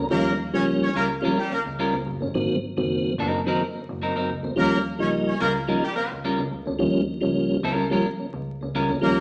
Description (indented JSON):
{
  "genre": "funk",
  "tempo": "108 BPM",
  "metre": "4/4",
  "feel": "straight",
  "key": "Eb mixolydian",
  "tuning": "A4 = 437 Hz",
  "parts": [
    { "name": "mellow tonewheel organ", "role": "stabs", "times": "0.0-9.2 s", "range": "Eb3 to Eb4", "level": "-24 LUFS", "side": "equal", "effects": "chorus vibrato, stopped rotary speaker" },
    { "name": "rich double bass", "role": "bass", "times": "0.0-9.2 s", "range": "Gb1 to Eb2", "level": "-31 LUFS", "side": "equal", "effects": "none" },
    { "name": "clear horn section", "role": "second line", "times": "0.1-9.2 s", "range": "G3 to Db5", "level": "-26 LUFS", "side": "equal", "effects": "none" },
    { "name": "clean electric guitar", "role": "accompaniment", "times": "1.0-8.9 s", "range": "Gb3 to Bb4", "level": "-26 LUFS", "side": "equal", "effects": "none" }
  ],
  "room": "wet large studio reverb, RT60 1.2 s",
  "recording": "band playing live in one room, vinyl crackle, small speaker sound",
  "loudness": "-21 LUFS",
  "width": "side -37 dB against mid",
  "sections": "0.0-9.2 A section",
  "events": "none",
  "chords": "0.0 Eb9; 2.3 Ab9; 4.6 Eb9"
}